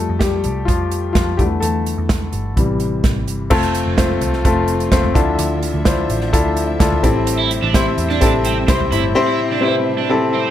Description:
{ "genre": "piano-driven pop", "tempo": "127 BPM", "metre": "4/4", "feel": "straight", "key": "unclear", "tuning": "A4 = 440 Hz", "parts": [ { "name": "clear baby grand piano", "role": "accompaniment", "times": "0.0-10.5 s", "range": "A2 to C5", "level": "-18 LUFS", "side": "left 3 dB", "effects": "none" }, { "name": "vintage muted picked electric bass", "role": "bass", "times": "0.0-9.1 s", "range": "F1 to F2", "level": "-22 LUFS", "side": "right 1 dB", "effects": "none" }, { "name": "natural country drum kit", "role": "drums", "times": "0.2-9.0 s", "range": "crash cymbal, hi-hat, kick drum, snare drum, toms", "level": "-18 LUFS", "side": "right 1 dB", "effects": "none" }, { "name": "warm studio string section", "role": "sustained chords", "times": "3.5-10.5 s", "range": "C3 to E5", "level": "-28 LUFS", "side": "right 4 dB", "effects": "none" }, { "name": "crunchy overdriven guitar", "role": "riff", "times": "7.4-10.5 s", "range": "C4 to E4", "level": "-22 LUFS", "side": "right 10 dB", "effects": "phaser" } ], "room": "light reverb, small room reverb", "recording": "none", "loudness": "-14 LUFS", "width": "side -11 dB against mid", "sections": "0.0-3.5 A section; 3.5-10.5 B section", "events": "grand piano solo 0.0-3.5", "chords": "0.0 Fadd9; 1.4 A7sus4; 2.6 Am7; 3.5 F; 5.2 Dmadd9; 7.0 Am7", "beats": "0.21 0.68 1.15 | 1.62 2.09 2.56 3.04 | 3.51 3.98 4.45 4.92 | 5.39 5.86 6.33 6.80 | 7.27 7.75 8.22 8.69 | 9.16 9.63 10.10" }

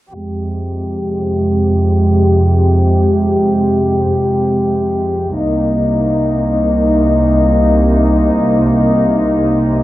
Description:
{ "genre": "trip hop", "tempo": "free time", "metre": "none", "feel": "none", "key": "F minor", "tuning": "A4 = 440 Hz", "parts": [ { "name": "rich chamber string section", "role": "sustained chords", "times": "0.1-9.8 s", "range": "C2 to G4", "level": "-11 LUFS", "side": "equal", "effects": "low-pass filter" } ], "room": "moderate spring reverb, RT60 1.8 s, studio ambience", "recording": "dark, warm production, low-pass filter", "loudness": "-11 LUFS", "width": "side -15 dB against mid", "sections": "0.1-9.8 A section", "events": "filter sweep on string section 0.1-9.8; filter sweep 0.1-9.8", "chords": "0.1 Fmadd9; 5.4 Cm7", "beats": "free time" }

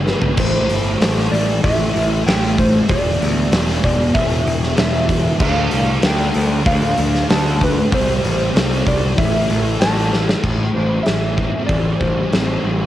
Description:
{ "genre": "rock, shoegaze and dream pop", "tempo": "96 BPM", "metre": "4/4", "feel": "straight", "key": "A minor", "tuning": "A4 = 439 Hz", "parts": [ { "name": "mellow electric guitar", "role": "melody", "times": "0.0-12.6 s", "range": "B4 to A5", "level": "-22 LUFS", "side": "equal", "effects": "analog chorus, cassette tape, analog delay" }, { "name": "thick fuzz guitar", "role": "riff", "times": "0.0-12.9 s", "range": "E2 to D4", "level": "-20 LUFS", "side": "equal", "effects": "distortion, analog chorus, cassette tape" }, { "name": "growling picked electric bass", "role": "bass", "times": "0.0-12.9 s", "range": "E1 to D2", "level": "-20 LUFS", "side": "equal", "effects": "overdrive, transformer saturation" }, { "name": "huge arena drum kit", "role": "drums", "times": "0.1-12.5 s", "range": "crash cymbal, hi-hat, kick drum, snare drum, toms", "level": "-19 LUFS", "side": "equal", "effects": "cassette tape" } ], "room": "light reverb", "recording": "home recording on cassette", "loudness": "-14 LUFS", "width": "side -13 dB against mid", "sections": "0.4-10.4 A section; 10.4-12.9 B section", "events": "drum fill 0.1-0.4, 10.1-10.4", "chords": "0.4 Am; 2.9 E5; 5.4 Dm; 7.9 C5; 9.2 A5; 10.4 Am7", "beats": "| 0.37 1.00 1.63 2.26 | 2.89 3.52 4.14 4.77 | 5.40 6.03 6.66 7.28 | 7.91 8.54 9.17 9.79 | 10.43 11.05 11.69 12.32" }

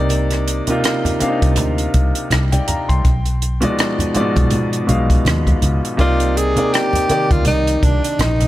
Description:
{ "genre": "lush 1970s-style soul", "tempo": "82 BPM", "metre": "4/4", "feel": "swing 58% on 16ths", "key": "C minor", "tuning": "A4 = 440 Hz", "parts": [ { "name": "clear concert grand piano", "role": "accompaniment", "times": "0.0-8.5 s", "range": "Ab2 to C6", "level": "-19 LUFS", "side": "equal", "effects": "none" }, { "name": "vintage muted fingered electric bass", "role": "bass", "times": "0.0-8.5 s", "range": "Bb1 to B2", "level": "-19 LUFS", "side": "equal", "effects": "none" }, { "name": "compact cocktail drum kit", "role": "drums", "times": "0.1-8.5 s", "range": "hi-hat, kick drum, rim click", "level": "-19 LUFS", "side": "equal", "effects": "none" }, { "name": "congas", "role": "percussion", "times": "0.1-8.5 s", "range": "none", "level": "-24 LUFS", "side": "right 1 dB", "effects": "none" }, { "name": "breathy tenor saxophone", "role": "melody", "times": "6.0-8.5 s", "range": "D4 to Ab4", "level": "-18 LUFS", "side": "equal", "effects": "tape echo" } ], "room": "studio ambience", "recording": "none", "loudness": "-14 LUFS", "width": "side -15 dB against mid", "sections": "0.0-8.5 A section", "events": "none", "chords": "0.0 Cm9; 3.0 G7b9b13/B (rootless); 6.0 Cm9", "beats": "| 0.10 0.84 1.58 2.31 | 3.05 3.78 4.52 5.25 | 5.99 6.72 7.46 8.20" }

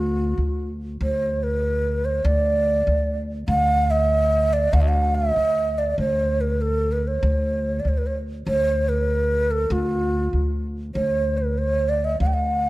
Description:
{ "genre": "Arabic maqam ensemble", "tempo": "96 BPM", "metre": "4/4", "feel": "straight", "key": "D maqam huzam", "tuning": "A4 = 439 Hz", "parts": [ { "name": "breathy mellow ney", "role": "melody", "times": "0.0-12.7 s", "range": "F4+48c to G5-48c", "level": "-22 LUFS", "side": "right 1 dB", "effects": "none" }, { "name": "upright bass", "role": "bass", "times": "0.0-12.7 s", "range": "D2", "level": "-23 LUFS", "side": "equal", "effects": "none" } ], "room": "light reverb", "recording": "close, detailed microphones", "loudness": "-19 LUFS", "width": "side -18 dB against mid", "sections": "0.0-12.7 A section", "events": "none", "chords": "none", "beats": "0.38 | 1.00 1.62 2.25 2.87 | 3.49 4.12 4.74 5.36 | 5.98 6.61 7.23 7.85 | 8.47 9.09 9.72 10.34 | 10.96 11.58 12.20" }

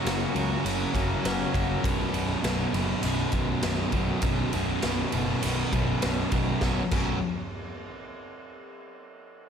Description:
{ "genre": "quiet-loud alternative rock", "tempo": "100 BPM", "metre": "4/4", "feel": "straight", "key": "unclear", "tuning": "A4 = 439 Hz", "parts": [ { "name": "twangy electric guitar", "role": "arpeggios", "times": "0.0-1.8 s", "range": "F#2 to F#4", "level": "-33 LUFS", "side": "left 2 dB", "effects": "spring reverb, slapback echo" }, { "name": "crunchy overdriven guitar", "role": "riff", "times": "0.0-7.2 s", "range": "B1 to C#4", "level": "-30 LUFS", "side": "right 9 dB", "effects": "slapback echo" }, { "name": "thick fuzz guitar", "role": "riff", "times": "0.0-7.2 s", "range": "B1 to F#3", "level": "-30 LUFS", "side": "left 8 dB", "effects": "distortion" }, { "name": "fuzz picked electric bass", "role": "bass", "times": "0.1-7.2 s", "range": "B0 to C#2", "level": "-32 LUFS", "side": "equal", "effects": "overdrive" }, { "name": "raw garage drum kit", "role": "drums", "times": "0.1-7.1 s", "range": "crash cymbal, kick drum, ride cymbal, snare drum", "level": "-31 LUFS", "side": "equal", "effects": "none" } ], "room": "moderate lush hall reverb, RT60 2.1 s", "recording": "big arena sound", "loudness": "-24 LUFS", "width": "side -7 dB against mid", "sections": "0.0-6.6 A section; 6.6-9.0 B section", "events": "none", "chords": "0.0 F#; 1.8 B5; 6.6 Bsus2", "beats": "0.05 0.65 1.25 | 1.84 2.44 3.04 3.64 | 4.24 4.84 5.44 6.04 | 6.63" }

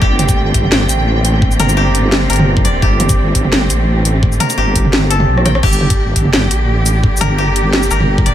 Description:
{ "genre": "half-time drum and bass", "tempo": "171 BPM", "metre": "4/4", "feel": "swing 54% on 16ths, half-time", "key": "G minor", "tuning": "A4 = 439 Hz", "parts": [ { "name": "bright symphonic cello section", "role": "sustained chords", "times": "0.0-8.3 s", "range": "D3 to G4", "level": "-19 LUFS", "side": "right 1 dB", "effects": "sidechain pumping" }, { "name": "koto", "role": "arpeggios", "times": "0.0-8.3 s", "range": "G4 to G5", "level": "-20 LUFS", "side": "left 2 dB", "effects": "dub echo" }, { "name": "deep soft wobble bass", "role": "bass", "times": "0.0-8.3 s", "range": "G1 to Bb1", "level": "-15 LUFS", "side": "equal", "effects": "chorus, tube saturation" }, { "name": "electronic kick drum", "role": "drums", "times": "0.0-8.2 s", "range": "none", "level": "-14 LUFS", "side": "equal", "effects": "none" }, { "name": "pulsing gated texture", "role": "texture", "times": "0.0-5.6 s", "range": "G5", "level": "-26 LUFS", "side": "right 2 dB", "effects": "chorus, built-in reverb" }, { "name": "drum and bass drum kit", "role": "drums", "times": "0.2-8.3 s", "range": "crash cymbal, hi-hat, rim click, shaker, snare drum, toms", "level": "-15 LUFS", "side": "equal", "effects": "none" } ], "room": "digital ambience", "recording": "none", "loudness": "-10 LUFS", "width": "side -11 dB against mid", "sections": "0.0-5.6 A section; 5.6-8.3 A section", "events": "drop 0.0-5.6, 5.6-8.3; kick drops out 4.9-5.6; drum fill 5.4", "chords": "0.0 Gmadd9", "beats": "| 0.02 0.37 0.72 1.07 | 1.42 1.77 2.12 2.47 | 2.82 3.17 3.52 3.88 | 4.23 4.58 4.93 5.28 | 5.63 5.98 6.33 6.68 | 7.03 7.38 7.74 8.09" }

